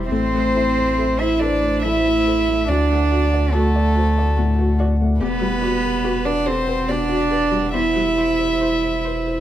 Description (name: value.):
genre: neoclassical piano and strings.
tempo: 70 BPM.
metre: 3/4.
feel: rubato.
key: A dorian.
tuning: A4 = 438 Hz.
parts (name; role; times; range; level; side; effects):
rich cello; second line; 0.0-9.4 s; A3 to E4; -20 LUFS; right 5 dB; none.
felt-muted upright piano; accompaniment; 0.0-9.4 s; D2 to E5; -25 LUFS; left 5 dB; none.
hollow soft pad; sustained chords; 0.0-9.4 s; G3 to F#5; -30 LUFS; left 1 dB; chorus.
pure sine sub bass; bass; 0.0-9.4 s; E1 to D2; -22 LUFS; equal; none.
warm violin; melody; 0.1-9.4 s; A4 to E5; -24 LUFS; left 4 dB; slapback echo.
warm viola; accompaniment; 0.1-9.1 s; F#4 to C5; -35 LUFS; right 2 dB; none.
room: moderate large studio reverb, RT60 1.3 s.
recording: none.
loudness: -16 LUFS.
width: side -12 dB against mid.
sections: 0.1-9.4 A section.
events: none.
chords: 0.1 Am; 2.7 D; 5.2 Emadd9; 7.7 C/E.